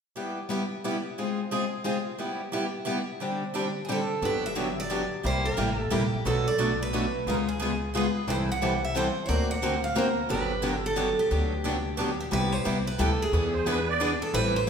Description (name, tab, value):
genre	acoustic string swing (jazz manouche)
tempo	178 BPM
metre	3/4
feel	swing 62% on 8ths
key	G major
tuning	A4 = 440 Hz
part	picked steel-string acoustic guitar	accompaniment	0.2-14.7 s	B2 to A#4	-29 LUFS	left 3 dB	none
part	picked steel-string acoustic guitar	accompaniment	0.2-14.6 s	B2 to C5	-32 LUFS	right 3 dB	none
part	picked steel-string acoustic guitar	melody	3.8-14.7 s	G4 to F#5	-29 LUFS	right 2 dB	none
part	upright bass	bass	4.2-14.7 s	G1 to E2	-31 LUFS	equal	none
part	musette accordion	second line	13.5-14.1 s	B4 to D5	-30 LUFS	right 4 dB	none
room	wet recital hall reverb, RT60 1.4 s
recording	recorded in a church or concert hall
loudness	-25 LUFS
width	side -7 dB against mid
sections	0.2-4.2 A section; 4.2-12.3 B section; 12.3-14.7 C section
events	none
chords	0.2 G6; 1.2 Ab6; 2.2 G6; 3.2 D7sus4; 4.2 Gmaj7; 5.2 C6; 6.3 Bm7; 7.3 C#7; 8.3 C6; 9.3 Daug7; 10.3 Gmaj7; 12.3 Cmaj7; 13.3 E7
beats	| 0.17 0.51 0.85 | 1.19 1.52 1.86 | 2.20 2.54 2.88 | 3.21 3.55 3.89 | 4.23 4.57 4.90 | 5.24 5.58 5.91 | 6.25 6.59 6.93 | 7.26 7.60 7.94 | 8.28 8.61 8.95 | 9.29 9.62 9.96 | 10.30 10.64 10.97 | 11.31 11.65 11.98 | 12.32 12.66 12.99 | 13.33 13.67 14.01 | 14.34 14.68